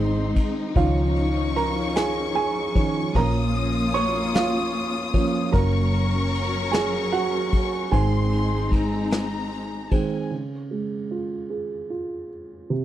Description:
six-eight pop ballad; 50 BPM (dotted quarters); 6/8; straight; Db major; A4 = 440 Hz
warm studio violin section; second line; 0.0-10.3 s; Ab5 to Eb6; -31 LUFS; left 5 dB
dark upright piano; accompaniment; 0.0-12.8 s; C3 to Db6; -25 LUFS; right 5 dB
warm studio string section; sustained chords; 0.0-10.3 s; F3 to Bb4; -28 LUFS; left 4 dB
vintage muted fingered electric bass; bass; 0.0-10.3 s; Gb1 to Db2; -26 LUFS; left 1 dB
vintage brush drum kit; drums; 0.4-10.1 s; kick drum, ride cymbal, snare drum; -24 LUFS; left 1 dB
small room ambience; dry, close 1970s-style studio recording; -21 LUFS; side -12 dB against mid
0.0-10.3 A section; 10.3-12.8 B section
upright piano solo 0.0-10.3
0.0 Ab; 0.8 Dbadd9; 3.1 Bbm; 5.5 Gb; 7.9 Ab; 10.3 Db

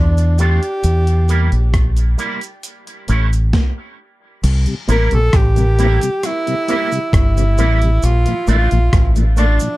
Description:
roots reggae; 67 BPM; 4/4; straight; A4 = 440 Hz
warm tenor saxophone; melody; 0.0-9.8 s; D4 to Bb4; -20 LUFS; right 1 dB; tape echo
deep dub fingered electric bass; bass; 0.0-9.6 s; G1 to E2; -13 LUFS; equal
breakbeat sampler-style drum kit; drums; 0.2-9.8 s; crash cymbal, hi-hat, kick drum, rim click, snare drum; -18 LUFS; equal
cabasa; percussion; 0.2-9.8 s; -34 LUFS; right 6 dB
electric guitar with an envelope filter; accompaniment; 0.4-9.6 s; G3 to F4; -25 LUFS; right 3 dB; ensemble chorus, tape echo
mellow tonewheel organ; accompaniment; 4.7-9.7 s; Bb2 to E4; -23 LUFS; left 2 dB; chorus vibrato, slow rotary speaker, tape echo
light reverb; dark, warm production; -13 LUFS; side -18 dB against mid
0.0-4.4 A section; 4.4-9.8 B section
stop 3.5-4.4
0.0 Dm; 0.8 Edim; 2.6 A; 4.4 C7; 8.0 Bbmaj7

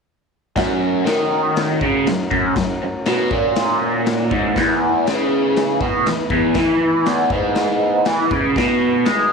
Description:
garage rock duo or trio; 120 BPM; 4/4; straight; F# mixolydian; A4 = 437 Hz
combo organ; sustained chords; 0.6-9.3 s; B3 to G#5; -26 LUFS; right 2 dB
raw garage guitar; riff; 0.6-9.3 s; E2 to G#3; -16 LUFS; right 1 dB; overdrive, phaser
raw garage drum kit; drums; 0.6-9.2 s; crash cymbal, kick drum, snare drum; -24 LUFS; left 4 dB
moderate plate reverb, RT60 1.9 s, small room ambience; 1960s-style stereo; -16 LUFS; side -5 dB against mid
0.6-9.3 A section
transistor combo organ fill 3.6-4.6
0.6 F#; 4.6 E5; 8.6 B5

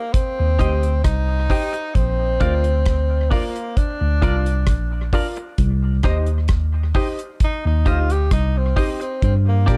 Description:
roots reggae; 66 BPM; 4/4; straight; C minor; A4 = 440 Hz
warm tenor saxophone; melody; 0.0-9.8 s; Bb3 to G4; -28 LUFS; equal; dub echo, plate reverb
damped 70s drum kit; drums; 0.1-9.8 s; hi-hat, kick drum, rim click; -22 LUFS; equal
mellow tine electric piano; bass; 0.4-9.8 s; Bb1 to Bb2; -21 LUFS; equal
semi-hollow electric guitar; accompaniment; 0.6-9.8 s; D4 to Eb5; -33 LUFS; equal; spring reverb, dub echo, plate reverb
warm baby grand piano; stabs; 0.6-9.8 s; D4 to G5; -31 LUFS; equal; plate reverb
little or no reverb; dark, warm production; -20 LUFS; mono
0.0-9.8 A section
tenor saxophone solo 0.0-9.8
0.0 Cm; 2.0 Bb; 5.6 Cm; 9.2 Gm

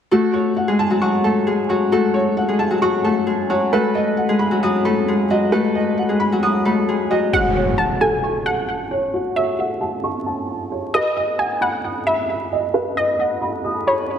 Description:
hip hop; 133 BPM; 4/4; half-time; F# dorian; A4 = 435 Hz
Celtic harp; melody; 0.1-9.5 s; F#3 to A4; -18 LUFS; left 2 dB; analog delay
felt-muted upright piano; accompaniment; 0.1-14.2 s; F#4 to D#6; -21 LUFS; right 2 dB; analog chorus, low-pass filter
warbly dusty pluck; second line; 7.3-14.2 s; C#5 to A5; -21 LUFS; equal; chorus, analog delay
impact; sound effects; 7.3-9.1 s; -26 LUFS; right 1 dB
wet plate reverb, RT60 2.5 s; dreamy mix soaked in reverb, vinyl crackle; -17 LUFS; side -8 dB against mid
0.1-7.3 A section; 7.3-14.2 B section
impact 7.3-9.1; filter sweep on felt piano 7.3-14.2
0.1 F#m; 3.7 B; 7.3 F#m; 10.9 B

